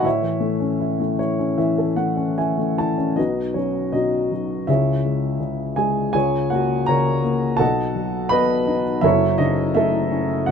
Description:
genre	classical, lyrical solo piano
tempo	73-84 BPM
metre	4/4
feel	rubato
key	unclear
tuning	A4 = 440 Hz
part	dark upright piano	solo	0.0-10.5 s	F#1 to B5	-18 LUFS	left 1 dB	none
room	light reverb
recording	close, detailed microphones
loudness	-18 LUFS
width	side -6 dB against mid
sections	0.0-3.2 A section; 3.2-10.5 B section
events	upright piano fill 0.8-3.2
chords	0.1 A; 3.2 B; 4.7 C#m; 6.2 F#/C#; 7.6 B; 9.1 F#m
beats	| 0.05 0.82 1.59 2.38 | 3.18 3.94 4.68 5.41 | 6.15 6.88 7.60 8.32 | 9.05 9.77 10.50

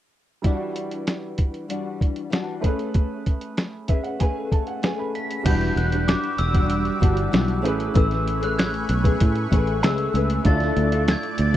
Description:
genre	indie pop, bedroom pop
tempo	96 BPM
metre	4/4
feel	straight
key	A major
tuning	A4 = 438 Hz
part	clear upright piano	accompaniment	0.4-11.6 s	G3 to B5	-32 LUFS	right 7 dB	cassette tape
part	flamenco guitar	accompaniment	0.4-11.6 s	E3 to E5	-27 LUFS	left 5 dB	ensemble chorus, vibrato effect
part	lo-fi sampler-style drum kit	drums	0.4-11.6 s	crash cymbal, hi-hat, kick drum, snare drum	-21 LUFS	equal	none
part	glockenspiel with rubber mallets	melody	5.2-11.6 s	D6 to B6	-28 LUFS	equal	analog chorus, tape echo
part	lush unison pad	sustained chords	5.9-11.6 s	G3 to E6	-31 LUFS	right 3 dB	chorus, phaser
part	fingered electric bass	bass	5.5-11.6 s	E1 to A2	-23 LUFS	equal	none
room	little or no reverb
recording	dry, close 1970s-style studio recording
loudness	-20 LUFS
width	side -12 dB against mid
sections	0.4-5.5 A section; 5.5-11.6 B section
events	upright piano fill 3.6-5.5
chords	0.4 Em9; 2.6 Amaj9; 5.5 Em9; 7.6 Amaj9; 10.5 Dmadd9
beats	| 0.45 1.07 1.70 2.33 | 2.95 3.58 4.20 4.83 | 5.46 6.08 6.71 7.33 | 7.96 8.58 9.21 9.83 | 10.45 11.08

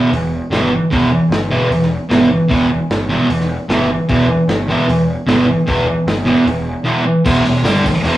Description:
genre	garage rock duo or trio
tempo	151 BPM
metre	4/4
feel	straight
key	E minor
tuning	A4 = 440 Hz
part	thick fuzz guitar	riff	0.0-8.2 s	E2 to G3	-13 LUFS	right 1 dB	distortion
part	fuzz picked electric bass	bass	0.1-8.2 s	E1 to G1	-21 LUFS	equal	overdrive
part	vintage drum kit	drums	0.1-8.1 s	crash cymbal, hi-hat, kick drum, snare drum	-21 LUFS	equal	none
part	tambourine	percussion	7.3-8.1 s	none	-36 LUFS	right 4 dB	none
room	moderate small room reverb, RT60 0.5 s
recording	rough rehearsal-room recording, warm saturation, small room reverb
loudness	-12 LUFS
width	side -14 dB against mid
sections	0.0-7.3 A section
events	none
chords	0.0 Em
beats	0.12 0.52 | 0.92 1.31 1.71 2.11 | 2.50 2.90 3.30 3.70 | 4.09 4.49 4.89 5.28 | 5.68 6.08 6.47 6.87 | 7.26 7.65 8.04

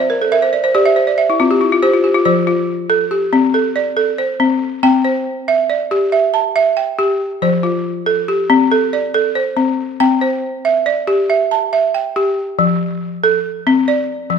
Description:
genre	west african traditional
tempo	93 BPM (dotted quarters)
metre	12/8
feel	straight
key	F major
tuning	A4 = 440 Hz
part	balafon	solo	0.0-14.4 s	F3 to A5	-13 LUFS	equal	none
room	moderate recital hall reverb, RT60 1.7 s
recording	minimal, uncompressed stereo recording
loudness	-13 LUFS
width	side -6 dB against mid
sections	0.0-2.3 A section; 2.3-12.6 B section; 12.6-14.4 C section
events	balafon fill 0.0-2.3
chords	0.0 C; 2.3 F; 4.8 C; 7.4 F; 10.0 C; 12.6 F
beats	0.32 0.96 1.61 | 2.25 2.90 3.54 4.19 | 4.83 5.48 6.12 6.77 | 7.41 8.06 8.71 9.35 | 10.00 10.64 11.29 11.94 | 12.58 13.22 13.87

